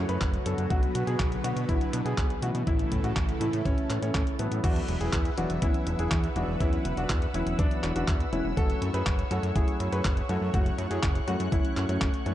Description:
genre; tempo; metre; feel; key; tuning
italo disco; 122 BPM; 4/4; straight; unclear; A4 = 440 Hz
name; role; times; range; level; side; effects
warm concert grand piano; melody; 0.0-12.3 s; A3 to B4; -33 LUFS; equal; vintage 12-bit sampler grit, digital delay, shimmer reverb
warm analog pad; sustained chords; 0.0-12.3 s; C#3 to F#6; -36 LUFS; right 1 dB; chorus, shimmer reverb
bell-like tine electric piano; stabs; 0.0-12.3 s; E3 to F#4; -35 LUFS; left 2 dB; phaser, shimmer reverb
fat analog bass; bass; 0.0-12.3 s; E1 to B2; -31 LUFS; equal; none
detuned 8-bit digital drum machine; drums; 0.1-12.3 s; crash cymbal, handclaps, hi-hat; -36 LUFS; equal; overdrive
electronic kick drum; drums; 0.2-12.1 s; none; -28 LUFS; equal; none
room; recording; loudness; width
light reverb, digital ambience; dark, warm production, nothing above 10.4 kHz; -25 LUFS; side -13 dB against mid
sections
0.0-4.6 A section; 4.6-12.3 B section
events
none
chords
0.0 F#m; 0.7 Bm; 2.7 A; 4.6 Esus2; 8.6 F#m7

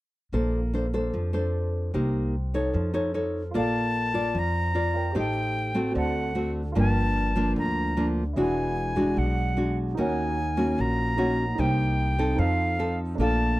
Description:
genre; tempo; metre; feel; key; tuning
bossa nova; 149 BPM; 4/4; straight; Bb major; A4 = 439 Hz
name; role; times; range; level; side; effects
nylon-string guitar; accompaniment; 0.3-13.6 s; G2 to D5; -26 LUFS; equal; none
upright bass; bass; 0.3-13.6 s; E1 to F2; -28 LUFS; equal; none
warm grand piano; accompaniment; 3.5-13.6 s; A3 to A5; -36 LUFS; right 4 dB; none
silver concert flute; melody; 3.6-13.6 s; F5 to Bb5; -29 LUFS; left 1 dB; none
room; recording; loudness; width
light reverb; dry, close 1970s-style studio recording; -23 LUFS; side -17 dB against mid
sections
0.3-3.5 A section; 3.5-13.6 B section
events
none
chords
0.3 Bbmaj9; 1.9 Cm7; 2.7 Faug7; 3.5 Bbmaj7; 5.2 Am7b5; 6.0 D7; 6.8 Gm7; 8.4 E9; 10.0 Ebm7; 11.6 Cm7; 12.4 F7

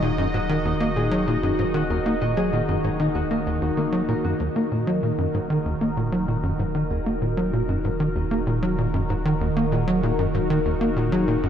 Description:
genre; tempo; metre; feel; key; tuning
ambient, sequencer-driven space music; 96 BPM; 4/4; straight; Eb minor; A4 = 437 Hz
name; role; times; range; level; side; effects
phased analog pad; sustained chords; 0.0-11.5 s; Eb3 to Eb5; -26 LUFS; right 1 dB; phaser, chorus
Celtic harp; arpeggios; 0.0-11.5 s; Eb3 to Eb5; -30 LUFS; left 4 dB; auto-pan, ping-pong delay
tight sequencer bass; riff; 0.0-11.5 s; Eb2 to Bb3; -23 LUFS; equal; lush chorus, ping-pong delay
warm sub bass; bass; 0.0-11.5 s; Eb1; -32 LUFS; equal; none
wind-like tuned noise texture; texture; 0.0-4.4 s; Eb5; -43 LUFS; right 4 dB; none
room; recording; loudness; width
moderate huge ambient reverb, RT60 8.4 s; in a vast, echoing space; -21 LUFS; side -9 dB against mid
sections
0.0-4.4 A section; 4.4-11.5 B section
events
none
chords
0.0 Ebm

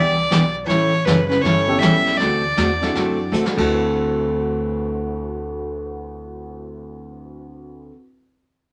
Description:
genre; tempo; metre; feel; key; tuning
country, western swing; 159 BPM; 4/4; swing 66% on 8ths; D mixolydian; A4 = 439 Hz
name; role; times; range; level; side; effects
rich fiddle; melody; 0.0-3.3 s; B4 to E5; -22 LUFS; equal; none
vintage hollow-body jazz guitar; second line; 0.0-3.3 s; C#3 to G3; -30 LUFS; equal; none
picked steel-string acoustic guitar; accompaniment; 0.0-7.9 s; D3 to A4; -24 LUFS; equal; none
upright bass; bass; 0.0-7.9 s; F#1 to A2; -32 LUFS; equal; none
vintage brush drum kit; drums; 0.3-3.6 s; brushed snare drum, crash cymbal, hi-hat, kick drum, snare drum; -29 LUFS; equal; none
dark upright piano; accompaniment; 1.7-8.1 s; D2 to B4; -29 LUFS; equal; none
room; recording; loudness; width
wet studio reverb, RT60 0.6 s; none; -19 LUFS; mono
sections
0.0-3.7 A section; 3.7-6.7 B section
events
drum fill 3.3-3.7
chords
0.0 Em7; 0.7 A9; 2.2 D9; 3.7 D13

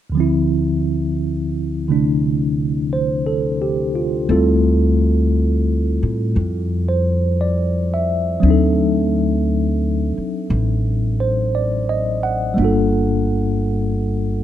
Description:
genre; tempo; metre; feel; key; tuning
jazz ballad; 58 BPM; 4/4; swing 68% on 8ths; D minor; A4 = 440 Hz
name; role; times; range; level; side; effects
bright tine electric piano; accompaniment; 0.1-14.4 s; D2 to F#5; -18 LUFS; equal; medium stereo tremolo
upright bass; bass; 4.3-14.4 s; G1 to A2; -18 LUFS; equal; none
room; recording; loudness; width
light reverb; close, detailed microphones; -16 LUFS; side -11 dB against mid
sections
0.1-4.3 A section; 4.3-14.4 B section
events
none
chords
0.1 Dm9; 8.4 D7b9; 12.6 Gm9

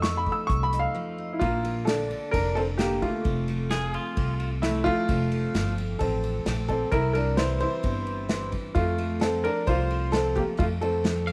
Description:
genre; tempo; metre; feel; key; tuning
honky-tonk and classic country; 131 BPM; 4/4; straight; F major; A4 = 437 Hz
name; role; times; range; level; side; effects
clear upright piano; melody; 0.0-11.2 s; A3 to E6; -29 LUFS; equal; none
picked steel-string acoustic guitar; accompaniment; 0.0-11.3 s; F2 to F4; -37 LUFS; equal; none
upright bass; bass; 0.0-11.3 s; F1 to F2; -31 LUFS; equal; none
unplugged drum kit; drums; 0.0-11.3 s; hi-hat, kick drum, ride cymbal, snare drum; -34 LUFS; equal; none
twangy electric guitar; second line; 3.7-4.5, 11.3 s; F4 to F5; -34 LUFS; equal; none
room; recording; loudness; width
light reverb, small room ambience; none; -26 LUFS; mono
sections
0.0-1.4 A section; 1.4-11.3 B section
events
upright piano solo 0.0-1.4; break 1.0-1.4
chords
0.0 F7; 1.4 Bb; 3.2 F; 6.9 C; 8.8 F

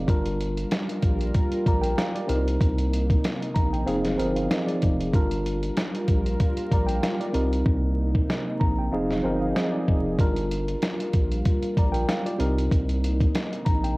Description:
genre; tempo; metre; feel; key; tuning
hip hop, boom-bap hip-hop; 95 BPM; 4/4; swing 55% on 16ths; G phrygian; A4 = 441 Hz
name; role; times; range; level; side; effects
tine electric piano; accompaniment; 0.0-14.0 s; C3 to Bb5; -28 LUFS; equal; overdrive, fast stereo tremolo, cassette tape, high-pass filter, low-pass filter
round analog bass; bass; 0.0-13.9 s; F1 to C2; -27 LUFS; equal; none
dark analog pad; sustained chords; 0.6-14.0 s; C3 to Bb4; -32 LUFS; equal; chorus, high-pass filter, low-pass filter, cassette tape
dusty soul sampler-style drum kit; drums; 0.1-14.0 s; hi-hat, kick drum, snare drum; -24 LUFS; equal; cassette tape
room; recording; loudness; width
little or no reverb; home recording on cassette, vinyl crackle; -22 LUFS; side -23 dB against mid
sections
0.1-14.0 A section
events
hi-hats muted 7.7-10.2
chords
0.1 Gm7; 2.3 Cm7; 3.9 Fm7; 5.1 Gm7; 7.3 Cm7; 8.9 Fm7; 10.2 Gm7; 12.4 Cm7

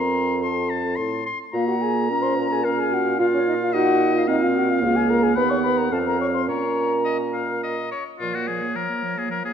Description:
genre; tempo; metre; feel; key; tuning
quick classical-period movement for wind quintet; 108 BPM; 3/4; straight; Bb minor; A4 = 445 Hz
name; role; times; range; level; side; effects
silver concert flute; melody; 0.0-9.5 s; Db5 to Db6; -28 LUFS; left 8 dB; none
bright oboe; second line; 0.0-9.5 s; F4 to C6; -27 LUFS; left 4 dB; none
dark clarinet; accompaniment; 0.0-9.5 s; F3 to F4; -25 LUFS; right 6 dB; none
warm French horn; accompaniment; 0.0-9.5 s; F3 to Db5; -25 LUFS; equal; none
mellow bassoon; bass; 0.0-8.7 s; Db2 to Bb2; -26 LUFS; right 2 dB; none
room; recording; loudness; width
moderate scoring stage reverb, RT60 1.5 s; dark, warm production; -19 LUFS; side -8 dB against mid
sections
0.0-8.2 A section; 8.2-9.5 A section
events
none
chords
0.0 F; 1.5 Bbm; 3.2 F5/Bb; 4.8 Bbm/Db; 5.4 B/D#; 5.9 F5; 6.5 Bbm

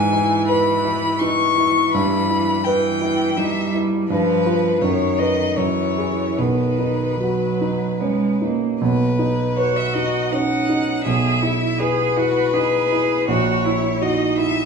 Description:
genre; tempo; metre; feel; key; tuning
classical, slow romantic movement for piano trio; 72-85 BPM; 3/4; rubato; B major; A4 = 438 Hz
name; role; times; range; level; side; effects
rich violin; melody; 0.0-14.7 s; B4 to C#6; -22 LUFS; left 6 dB; none
rich cello; second line; 0.0-14.7 s; D#3 to G#4; -23 LUFS; right 6 dB; none
warm grand piano; accompaniment; 0.0-14.7 s; A#1 to B4; -20 LUFS; right 1 dB; none
room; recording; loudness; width
moderate studio reverb, RT60 1.0 s; studio reverb; -17 LUFS; side -5 dB against mid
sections
0.0-8.8 A section; 8.8-14.7 A section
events
none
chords
0.0 E/G#; 1.9 Em/G; 4.1 G7; 4.8 B/F#; 5.6 F#sus2; 6.4 B; 11.1 Emaj7/B; 13.3 F#7/A#

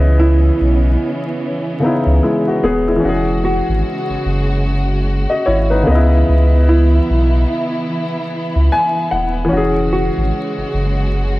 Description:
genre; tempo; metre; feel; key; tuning
lo-fi hip hop; 74 BPM; 4/4; swing 60% on 16ths; unclear; A4 = 444 Hz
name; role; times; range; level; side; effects
warm upright piano; accompaniment; 0.0-11.4 s; C#3 to G#5; -18 LUFS; left 1 dB; low-pass filter
warm studio string section; sustained chords; 0.0-11.4 s; C#3 to F#4; -22 LUFS; right 1 dB; low-pass filter
warm sub bass; bass; 0.0-11.4 s; D#1 to C#2; -14 LUFS; equal; none
hollow-body jazz guitar; melody; 0.2-11.3 s; E4 to F#4; -21 LUFS; right 2 dB; low-pass filter, tape echo
room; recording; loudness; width
light reverb, studio reverb; vinyl crackle; -13 LUFS; side -18 dB against mid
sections
0.0-11.4 A section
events
none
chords
0.0 C#m9; 3.0 E69; 5.9 C#m9; 9.5 E69

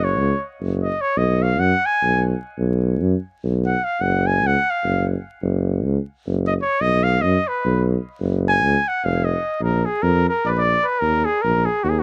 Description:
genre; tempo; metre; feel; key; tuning
balkan folk; 299 BPM (eighths); 7/8; straight; unclear; A4 = 441 Hz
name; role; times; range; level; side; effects
warm trumpet; melody; 0.0-12.0 s; Gb4 to G#5; -22 LUFS; equal; none
warm tuba; bass; 0.0-12.0 s; E#1 to F#2; -22 LUFS; equal; none
room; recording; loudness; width
little or no reverb; dark, warm production, vinyl crackle; -20 LUFS; mono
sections
0.0-9.6 A section; 9.6-12.0 B section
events
trumpet solo 0.0-9.6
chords
0.0 F#5; 1.2 B5; 4.0 F#5; 6.8 B5; 8.2 F#5; 9.0 D#sus2/E#; 9.6 Bb5; 11.0 Eb5

